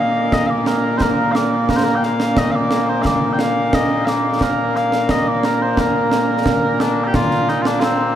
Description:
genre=scottish traditional, Scottish pipe music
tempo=88 BPM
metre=2/4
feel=straight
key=Bb major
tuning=A4 = 440 Hz
part: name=mellow small bagpipes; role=melody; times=0.0-8.2 s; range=Bb2 to G5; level=-16 LUFS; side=equal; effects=diffuse ambient delay
part: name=concert snare drum and concert bass drum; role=drums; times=0.3-8.0 s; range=none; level=-20 LUFS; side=right 1 dB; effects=none
room=wet huge ambient reverb, RT60 8.3 s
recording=dreamy mix soaked in reverb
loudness=-15 LUFS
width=side -10 dB against mid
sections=0.0-7.1 A section; 7.1-8.2 B section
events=none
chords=none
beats=| 0.32 1.00 | 1.68 2.37 | 3.05 3.73 | 4.41 5.09 | 5.78 6.46 | 7.14 7.82

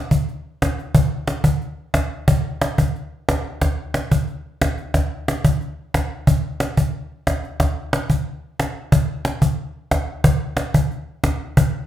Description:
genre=flamenco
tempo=181 BPM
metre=4/4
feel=straight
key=none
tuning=none
part: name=cajon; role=percussion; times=0.1-11.7 s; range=none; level=-18 LUFS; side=equal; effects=none
room=wet large studio reverb, RT60 0.8 s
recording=heard from further back in the room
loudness=-19 LUFS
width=side -12 dB against mid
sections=0.0-4.9 A section; 4.9-11.9 B section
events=none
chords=none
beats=0.28 0.62 | 0.95 1.28 1.62 1.95 | 2.28 2.62 2.95 3.28 | 3.62 3.95 4.28 4.61 | 4.95 5.28 5.61 5.94 | 6.27 6.61 6.94 7.27 | 7.60 7.93 8.26 8.59 | 8.92 9.25 9.58 9.91 | 10.24 10.58 10.91 11.24 | 11.57

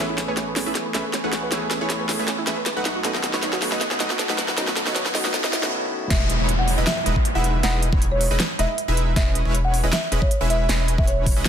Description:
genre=future bass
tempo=157 BPM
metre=4/4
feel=half-time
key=unclear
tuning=A4 = 441 Hz
part: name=warm grand piano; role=accompaniment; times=0.0-6.1 s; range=D#3 to G#4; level=-31 LUFS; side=equal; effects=sidechain pumping, ping-pong delay
part: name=airy breathy pad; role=sustained chords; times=0.0-5.7 s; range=A3 to D#6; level=-35 LUFS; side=equal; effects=none
part: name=wide unison pluck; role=arpeggios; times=0.0-5.7 s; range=C#4 to D#5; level=-31 LUFS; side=right 2 dB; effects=sidechain pumping, ping-pong delay
part: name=supersaw stab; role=riff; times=0.0-11.4 s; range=G#3 to F#5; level=-27 LUFS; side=right 1 dB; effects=sidechain pumping, low-pass filter
part: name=saturated sub bass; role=bass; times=0.0-11.4 s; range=E1 to B1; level=-25 LUFS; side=equal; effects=sidechain pumping
part: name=riser, swell and downlifter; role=sound effects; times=1.7-9.2 s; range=none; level=-31 LUFS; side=equal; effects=none
part: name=pop drum kit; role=drums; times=0.2-11.5 s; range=crash cymbal, hi-hat, snare drum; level=-25 LUFS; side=equal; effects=soft clipping on snare, high-pass filter on snare, high-pass filter on hats, high-pass filter on cymbals
part: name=folk marimba with soft mallets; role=melody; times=6.1-11.2 s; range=C#5 to F#5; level=-27 LUFS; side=equal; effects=sidechain pumping, ping-pong delay
part: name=electronic kick drum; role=drums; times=6.1-11.3 s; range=none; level=-20 LUFS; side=equal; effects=none
room=light reverb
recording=dense, heavily limited modern master, high-pass filter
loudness=-19 LUFS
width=side -9 dB against mid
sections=0.0-6.1 A section; 6.1-11.5 B section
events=build-up 0.0-6.1; drum fill 0.0-5.7; filter sweep on synth arpeggio sound 0.0-6.1; swell 5.3-6.1; break 5.7-6.1; drop 6.1-11.5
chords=0.0 Amaj9; 2.9 B7; 6.1 C#m9/E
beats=0.37 0.76 1.14 | 1.52 1.90 2.29 2.67 | 3.05 3.43 3.81 4.20 | 4.58 4.96 5.34 5.72 | 6.11 6.49 6.87 7.25 | 7.63 8.02 8.40 8.78 | 9.16 9.55 9.93 10.31 | 10.69 11.07 11.46

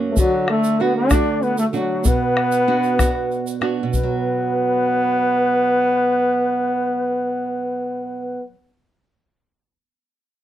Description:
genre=andean folk, Andean ensemble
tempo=64 BPM (dotted quarters)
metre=6/8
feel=straight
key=B minor pentatonic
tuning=A4 = 440 Hz
part: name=nylon-string guitar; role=accompaniment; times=0.0-8.5 s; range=F#2 to F#4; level=-24 LUFS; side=right 5 dB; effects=none
part: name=clear trombone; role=melody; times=0.1-8.4 s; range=F#3 to D4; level=-19 LUFS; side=equal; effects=none
part: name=mellow large quena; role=second line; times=0.1-8.4 s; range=F#4 to D5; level=-27 LUFS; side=left 5 dB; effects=none
part: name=bombo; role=percussion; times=0.2-4.2 s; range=none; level=-19 LUFS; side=left 2 dB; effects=none
part: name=tube shaker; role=percussion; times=0.2-4.2 s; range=none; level=-32 LUFS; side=right 7 dB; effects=none
room=light reverb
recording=dark, warm production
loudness=-17 LUFS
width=side -12 dB against mid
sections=0.0-3.9 A section; 3.9-7.7 B section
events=none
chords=0.2 D; 2.1 Bm; 3.9 B5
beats=| 0.17 1.11 | 2.05 3.00 | 3.94 4.88 | 5.82 6.75

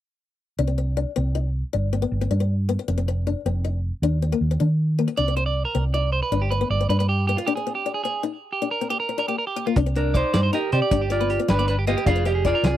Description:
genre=highlife guitar band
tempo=104 BPM (dotted quarters)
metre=12/8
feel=straight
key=C minor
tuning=A4 = 440 Hz
part: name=picked acoustic archtop guitar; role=accompaniment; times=0.6-12.8 s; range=Bb3 to Eb4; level=-27 LUFS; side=left 9 dB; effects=none
part: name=hollow-body short-scale fingered electric bass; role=bass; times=0.6-12.8 s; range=F1 to Eb3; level=-22 LUFS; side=right 1 dB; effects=none
part: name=electric guitar at the edge of break-up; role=arpeggios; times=5.2-12.8 s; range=F4 to D5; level=-26 LUFS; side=right 5 dB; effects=tape echo
part: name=warm soul drum kit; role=drums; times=9.8-12.7 s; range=hi-hat, kick drum, snare drum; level=-23 LUFS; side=right 1 dB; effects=none
part: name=clean electric guitar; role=melody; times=10.0-12.8 s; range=D4 to F5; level=-23 LUFS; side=right 1 dB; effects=none
room=little or no reverb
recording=dry, close 1970s-style studio recording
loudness=-20 LUFS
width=side -12 dB against mid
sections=0.6-9.8 A section; 9.8-12.8 B section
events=break 7.5-9.8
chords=0.6 N.C.; 1.7 G; 2.9 F5; 4.0 Eb5; 5.2 Csus2; 6.3 G; 7.5 C5; 8.6 Bb6; 9.8 Cmadd9; 10.9 G; 12.1 Fmadd9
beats=| 0.58 1.16 1.73 2.31 | 2.88 3.45 4.03 4.60 | 5.17 5.75 6.32 6.90 | 7.47 8.05 8.62 9.19 | 9.77 10.34 10.92 11.49 | 12.06 12.64

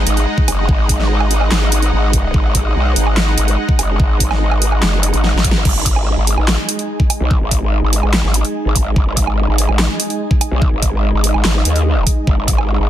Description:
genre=heavy wobble dubstep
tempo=145 BPM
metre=4/4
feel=half-time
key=unclear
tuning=A4 = 440 Hz
part: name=supersaw pad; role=sustained chords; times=0.0-12.9 s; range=G#3 to C#6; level=-21 LUFS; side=right 1 dB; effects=vintage 12-bit sampler grit, sidechain pumping, low-pass filter
part: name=growl bass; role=bass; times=0.0-12.9 s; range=F#1 to D#2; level=-15 LUFS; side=equal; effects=chorus, overdrive
part: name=dubstep drum kit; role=drums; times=0.1-12.7 s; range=crash cymbal, handclaps, hi-hat, snare drum, woodblock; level=-19 LUFS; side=right 2 dB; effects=overdrive
part: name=electronic kick drum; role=drums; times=0.4-12.6 s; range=none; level=-15 LUFS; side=equal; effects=overdrive
room=little or no reverb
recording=dense, heavily limited modern master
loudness=-13 LUFS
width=side -12 dB against mid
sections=0.0-5.7 A section; 5.7-12.9 A section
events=drop 0.0-5.7, 5.7-12.9; drum fill 5.2-5.7; band accent 5.5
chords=0.0 G#5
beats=0.27 | 0.69 1.10 1.51 1.93 | 2.34 2.75 3.17 3.58 | 4.00 4.41 4.82 5.24 | 5.65 6.07 6.48 6.89 | 7.31 7.72 8.13 8.55 | 8.96 9.38 9.79 10.20 | 10.62 11.03 11.45 11.86 | 12.27 12.69

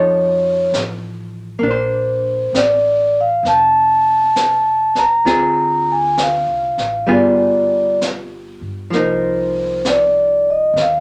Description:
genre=jazz ballad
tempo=66 BPM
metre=4/4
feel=swing 67% on 8ths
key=unclear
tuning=A4 = 438 Hz
part: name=vibraphone with medium mallets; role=melody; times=0.0-11.0 s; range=C5 to Bb5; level=-16 LUFS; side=equal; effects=none
part: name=archtop guitar, miked and amplified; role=accompaniment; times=0.0-11.0 s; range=D3 to C#5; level=-23 LUFS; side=equal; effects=none
part: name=upright bass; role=bass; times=0.0-11.0 s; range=F1 to G2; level=-33 LUFS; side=equal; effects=none
part: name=jazz brush drum kit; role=drums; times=0.7-11.0 s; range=brushed snare drum, hi-hat, snare drum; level=-27 LUFS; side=equal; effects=none
room=moderate studio ambience, RT60 0.4 s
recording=none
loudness=-16 LUFS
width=mono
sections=0.0-11.0 A section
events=none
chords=0.0 Faug7; 1.6 Bbmaj9; 5.3 Dm7b5; 7.1 G7b9; 8.9 Cm7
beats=0.73 | 1.63 2.54 3.44 4.35 | 5.26 6.17 7.08 8.00 | 8.91 9.83 10.74

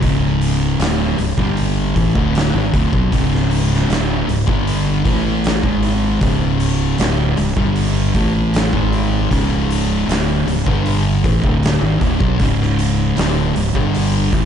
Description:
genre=stoner and doom metal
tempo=78 BPM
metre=4/4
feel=straight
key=unclear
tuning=A4 = 441 Hz
part: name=thick fuzz guitar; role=riff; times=0.0-14.5 s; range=C#2 to A3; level=-20 LUFS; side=left 9 dB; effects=distortion
part: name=thick fuzz guitar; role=riff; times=0.0-14.5 s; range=C#2 to A3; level=-20 LUFS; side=right 9 dB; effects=distortion
part: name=fingered electric bass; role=bass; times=0.0-14.5 s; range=C#1 to B1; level=-21 LUFS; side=equal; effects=overdrive
part: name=oversized low-tuned drum kit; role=drums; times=0.0-14.5 s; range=hi-hat, kick drum, snare drum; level=-20 LUFS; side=equal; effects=none
room=studio ambience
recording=dark, warm production, nothing above 10.7 kHz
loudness=-14 LUFS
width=side -8 dB against mid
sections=0.0-14.5 A section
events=none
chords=0.0 C#m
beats=| 0.03 0.80 1.58 2.35 | 3.13 3.90 4.68 5.45 | 6.22 7.00 7.77 8.54 | 9.32 10.09 10.86 11.63 | 12.40 13.18 13.95

